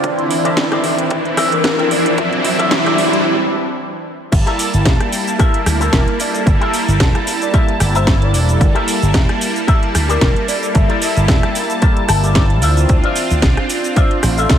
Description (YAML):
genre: nu-disco, nu disco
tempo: 112 BPM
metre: 4/4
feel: swing 55% on 16ths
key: G dorian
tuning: A4 = 441 Hz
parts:
  - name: soft octave-layered synth lead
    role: melody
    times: 0.0-14.6 s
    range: A4 to E5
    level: -24 LUFS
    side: left 1 dB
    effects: chorus, phaser, diffuse ambient delay
  - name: warm analog pad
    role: accompaniment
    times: 0.0-14.6 s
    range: E3 to A5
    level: -19 LUFS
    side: right 1 dB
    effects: chorus, vintage 12-bit sampler grit, diffuse ambient delay
  - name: electronic kick drum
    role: drums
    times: 0.0-14.6 s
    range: none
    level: -14 LUFS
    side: equal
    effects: high-pass filter on kick
  - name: house drum kit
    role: drums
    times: 0.0-14.6 s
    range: cabasa, crash cymbal, hi-hat, rim click, snare drum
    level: -21 LUFS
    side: right 1 dB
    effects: none
  - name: riser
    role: sound effects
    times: 0.0-3.3 s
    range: none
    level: -22 LUFS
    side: left 1 dB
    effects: none
  - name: electric guitar with an envelope filter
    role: riff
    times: 0.4-14.6 s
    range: F4 to A5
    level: -22 LUFS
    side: left 2 dB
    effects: analog chorus, diffuse ambient delay
  - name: slap bass with an envelope filter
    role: bass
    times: 4.3-14.6 s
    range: E1 to D2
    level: -15 LUFS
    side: equal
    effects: none
room: moderate lush hall reverb, RT60 2.3 s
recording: dreamy mix soaked in reverb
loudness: -12 LUFS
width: side -9 dB against mid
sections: 0.0-4.3 A section; 4.3-14.6 B section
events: build-up 0.0-4.3; riser 0.0-3.3; break 3.3-4.3; drop 4.3-14.6; clean electric guitar fill 11.8-12.9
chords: 0.0 C13; 12.6 Dm9